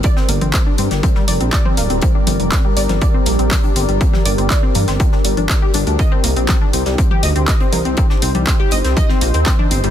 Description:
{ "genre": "melodic techno", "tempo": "121 BPM", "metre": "4/4", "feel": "straight", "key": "C minor", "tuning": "A4 = 439 Hz", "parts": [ { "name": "deep dark ambient pad", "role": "sustained chords", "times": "0.0-9.9 s", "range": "G3 to D5", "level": "-22 LUFS", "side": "equal", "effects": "chorus, built-in reverb, sidechain pumping" }, { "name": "tight sequenced synth", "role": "arpeggios", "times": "0.0-9.9 s", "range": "G3 to Eb5", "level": "-22 LUFS", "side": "left 2 dB", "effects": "chorus, sidechain pumping, digital delay" }, { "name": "electronic kick drum", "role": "drums", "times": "0.0-9.6 s", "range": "none", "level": "-15 LUFS", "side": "equal", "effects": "overdrive, studio ambience" }, { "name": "modern studio drum kit", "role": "drums", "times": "0.0-9.8 s", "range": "hi-hat, snare drum", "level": "-32 LUFS", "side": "left 3 dB", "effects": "none" }, { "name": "techno drum kit", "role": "drums", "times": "0.0-9.9 s", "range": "handclaps, hi-hat, toms", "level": "-22 LUFS", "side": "left 1 dB", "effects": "overdrive, studio ambience" }, { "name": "dark detuned saw bass", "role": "bass", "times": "0.3-9.9 s", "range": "D1 to G2", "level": "-18 LUFS", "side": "equal", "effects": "sidechain pumping" } ], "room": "little or no reverb", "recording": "dense, heavily limited modern master", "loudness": "-13 LUFS", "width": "side -10 dB against mid", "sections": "0.0-9.9 A section", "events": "none", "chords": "0.0 Gm; 6.0 Cm" }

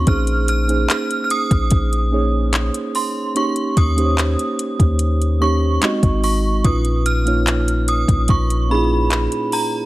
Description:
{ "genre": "contemporary R&B", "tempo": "73 BPM", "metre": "4/4", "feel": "straight", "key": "Bb minor", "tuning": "A4 = 438 Hz", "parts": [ { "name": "synth chime", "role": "melody", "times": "0.0-9.9 s", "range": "Bb5 to F6", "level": "-23 LUFS", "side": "right 2 dB", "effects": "ensemble chorus, tape echo" }, { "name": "muted felt-like synth keys", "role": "accompaniment", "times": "0.0-9.9 s", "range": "Bb2 to Eb5", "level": "-21 LUFS", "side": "right 2 dB", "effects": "chorus" }, { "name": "long sustained 808-style bass", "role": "bass", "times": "0.0-9.3 s", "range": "Ab1 to Eb2", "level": "-18 LUFS", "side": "equal", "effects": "none" }, { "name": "smooth R&B drum kit", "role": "drums", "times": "0.1-9.7 s", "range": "handclaps, hi-hat, kick drum", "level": "-19 LUFS", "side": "equal", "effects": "none" } ], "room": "little or no reverb", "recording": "none", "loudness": "-15 LUFS", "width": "side -17 dB against mid", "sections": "0.0-9.9 A section", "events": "none", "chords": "0.1 Bbm11; 3.4 Eb7; 5.8 Ab7; 6.6 Db13/Bb" }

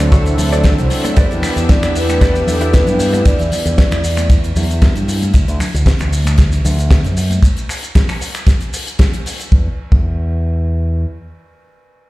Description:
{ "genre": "nu-disco, nu disco", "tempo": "115 BPM", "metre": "4/4", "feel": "swing 53% on 16ths", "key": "E minor", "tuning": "A4 = 440 Hz", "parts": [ { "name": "vibraphone with soft mallets", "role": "melody", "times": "0.0-4.3 s", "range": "A4 to D5", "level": "-21 LUFS", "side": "equal", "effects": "digital delay" }, { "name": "warm analog pad", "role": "accompaniment", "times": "0.0-3.2 s", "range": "E3 to A4", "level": "-20 LUFS", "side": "equal", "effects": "chorus, sidechain pumping, ping-pong delay" }, { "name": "string machine, full ensemble", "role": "sustained chords", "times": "0.0-5.4 s", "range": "E4 to E5", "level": "-28 LUFS", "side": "right 2 dB", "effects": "phaser, ensemble chorus, sidechain pumping" }, { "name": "fingered electric bass with an envelope filter", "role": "bass", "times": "0.0-11.0 s", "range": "C2 to G2", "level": "-16 LUFS", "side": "equal", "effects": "none" }, { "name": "damped 70s drum kit", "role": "drums", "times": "0.0-9.5 s", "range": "finger snaps, hi-hat, ride cymbal, shaker, snare drum", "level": "-22 LUFS", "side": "equal", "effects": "studio reverb" }, { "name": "congas", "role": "percussion", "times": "0.0-7.4 s", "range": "none", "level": "-26 LUFS", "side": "left 2 dB", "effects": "none" }, { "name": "direct-recorded clean electric guitar", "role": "riff", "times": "0.1-3.2 s", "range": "E4 to E5", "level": "-25 LUFS", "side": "right 1 dB", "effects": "analog chorus, ping-pong delay" }, { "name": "kick drum", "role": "drums", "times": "0.1-10.1 s", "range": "none", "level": "-11 LUFS", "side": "equal", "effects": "studio reverb" } ], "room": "small room ambience", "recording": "played on a big sound system in a bare room, stone room reverb", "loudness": "-12 LUFS", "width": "side -18 dB against mid", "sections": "0.0-9.5 A section; 9.5-12.1 B section", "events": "drop 0.0-9.5", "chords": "0.0 D7; 1.2 Em7; 5.3 N.C." }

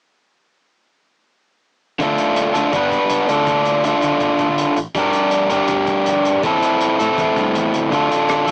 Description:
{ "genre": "indie rock", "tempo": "162 BPM", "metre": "4/4", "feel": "straight", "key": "D minor", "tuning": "A4 = 438 Hz", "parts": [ { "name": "overdriven electric guitar", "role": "riff", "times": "2.0-8.5 s", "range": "A2 to B4", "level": "-18 LUFS", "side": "equal", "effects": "cassette tape" }, { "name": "growling picked electric bass", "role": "bass", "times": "2.0-8.5 s", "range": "G1 to D3", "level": "-30 LUFS", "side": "equal", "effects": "overdrive" }, { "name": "cloth-damped thuddy drum kit", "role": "drums", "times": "2.0-8.5 s", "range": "hi-hat, kick drum, rim click", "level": "-32 LUFS", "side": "equal", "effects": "cassette tape" } ], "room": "moderate booth ambience, RT60 0.2 s", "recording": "home recording on cassette, small speaker sound", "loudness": "-17 LUFS", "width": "mono", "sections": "2.0-8.5 A section", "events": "none", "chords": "2.0 Dm; 2.7 G; 3.3 Dm; 5.0 Gm; 6.4 Am; 7.9 Dm" }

